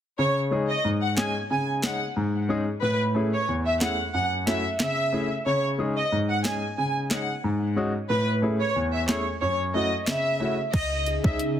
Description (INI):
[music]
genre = dancehall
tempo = 91 BPM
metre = 4/4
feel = straight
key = C# minor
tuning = A4 = 439 Hz
[part]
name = warm symphonic violin section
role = melody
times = 0.2-11.4 s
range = B4 to G#5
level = -26 LUFS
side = right 1 dB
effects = tape echo
[part]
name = clear grand piano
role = accompaniment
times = 0.2-11.4 s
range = E2 to G#4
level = -26 LUFS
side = left 1 dB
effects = sidechain pumping
[part]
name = island pop drum kit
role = drums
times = 1.2-11.6 s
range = crash cymbal, handclaps, hi-hat, kick drum, rim click, snare drum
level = -28 LUFS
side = equal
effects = none
[part]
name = glassy FM pad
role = sustained chords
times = 11.0-11.6 s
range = C#3 to G#4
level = -28 LUFS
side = right 1 dB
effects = ensemble chorus, built-in reverb, phaser, sidechain pumping
[part]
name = clean 808-style bass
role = bass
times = 10.7-11.4 s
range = C#2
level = -29 LUFS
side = equal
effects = none
[sound]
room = light reverb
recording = dense, heavily limited modern master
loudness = -23 LUFS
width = side -10 dB against mid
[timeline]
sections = 0.2-10.7 A section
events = kick muted 8.1-10.7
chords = 0.2 C#sus2; 2.8 Amaj7; 4.1 F#m7; 5.5 C#sus2; 8.1 Amaj7; 9.4 F#m7; 10.7 C#sus2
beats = | 0.19 0.85 1.50 2.16 | 2.82 3.48 4.14 4.80 | 5.46 6.12 6.78 7.44 | 8.10 8.76 9.42 10.08 | 10.74 11.39